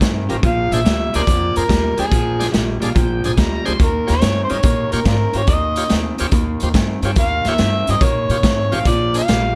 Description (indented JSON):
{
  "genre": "electric blues shuffle",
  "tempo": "143 BPM",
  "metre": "4/4",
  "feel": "swing 67% on 8ths",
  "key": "unclear",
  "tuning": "A4 = 439 Hz",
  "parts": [
    { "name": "electric guitar through a small old amp", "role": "riff", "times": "0.0-9.5 s", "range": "Bb2 to C4", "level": "-25 LUFS", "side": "equal", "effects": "none" },
    { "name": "upright bass", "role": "bass", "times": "0.0-9.5 s", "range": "A1 to Bb2", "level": "-24 LUFS", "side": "equal", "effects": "none" },
    { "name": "raw garage drum kit", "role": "drums", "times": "0.0-9.4 s", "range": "hi-hat, kick drum, snare drum", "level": "-21 LUFS", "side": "equal", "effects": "none" },
    { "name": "bright tonewheel organ", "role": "accompaniment", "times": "0.3-9.2 s", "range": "D4 to C6", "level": "-29 LUFS", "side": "equal", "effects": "slow rotary speaker, overdrive" },
    { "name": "overdriven harmonica", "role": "melody", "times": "0.5-9.6 s", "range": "D4 to F5", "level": "-23 LUFS", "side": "equal", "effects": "none" }
  ],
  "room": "light reverb",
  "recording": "none",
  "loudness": "-17 LUFS",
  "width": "mono",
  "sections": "0.0-9.6 A section",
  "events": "tonewheel organ fill 2.5-3.8",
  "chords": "0.4 Bb9; 3.8 Eb9; 8.9 Bb9"
}